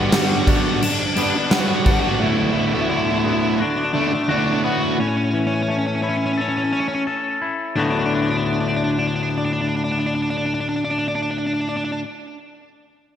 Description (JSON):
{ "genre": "post-rock", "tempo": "86 BPM", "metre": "4/4", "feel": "straight", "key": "D major", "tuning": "A4 = 441 Hz", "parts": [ { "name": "overdriven semi-hollow guitar", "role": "melody", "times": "0.0-12.0 s", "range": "C#4 to F#4", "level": "-22 LUFS", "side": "equal", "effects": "digital delay" }, { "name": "twangy electric guitar", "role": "arpeggios", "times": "0.0-12.1 s", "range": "D2 to A4", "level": "-23 LUFS", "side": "left 3 dB", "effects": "digital delay" }, { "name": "distorted electric guitar", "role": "riff", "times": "0.0-5.0 s", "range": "D2 to G4", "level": "-21 LUFS", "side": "right 2 dB", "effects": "distortion" }, { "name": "huge arena drum kit", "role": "drums", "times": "0.1-2.0 s", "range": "crash cymbal, kick drum, snare drum", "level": "-21 LUFS", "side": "equal", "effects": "none" } ], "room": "moderate lush hall reverb, RT60 2.0 s", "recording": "big arena sound", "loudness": "-18 LUFS", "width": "side -9 dB against mid", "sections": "0.0-7.8 A section; 7.8-10.5 B section", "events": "none", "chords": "0.0 Gmaj7; 2.2 D6; 5.0 A; 7.8 D6" }